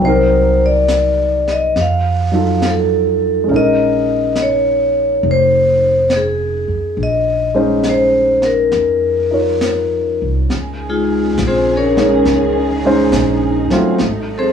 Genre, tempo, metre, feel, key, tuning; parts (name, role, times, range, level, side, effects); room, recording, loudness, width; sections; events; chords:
jazz ballad; 69 BPM; 4/4; swing 67% on 8ths; Bb minor; A4 = 442 Hz
vibraphone with medium hard mallets; melody; 0.0-14.5 s; Ab3 to F5; -14 LUFS; left 2 dB; cassette tape
warm grand piano; accompaniment; 0.0-14.0 s; Gb3 to Db5; -17 LUFS; right 2 dB; cassette tape
upright bass; bass; 0.0-14.5 s; F1 to F2; -20 LUFS; equal
jazz brush drum kit; drums; 0.0-14.5 s; brushed snare drum, hi-hat, snare drum; -26 LUFS; left 2 dB
warm symphonic string section; sustained chords; 10.5-14.5 s; Db3 to Ab4; -24 LUFS; left 1 dB; cassette tape
light reverb; home recording on cassette, studio ambience; -12 LUFS; side -7 dB against mid
0.0-10.5 A section; 10.5-14.5 B section
vibraphone solo 10.5-14.5
0.0 Cm7b5; 1.8 F7b9; 3.5 Bbm11; 14.0 Ab7b9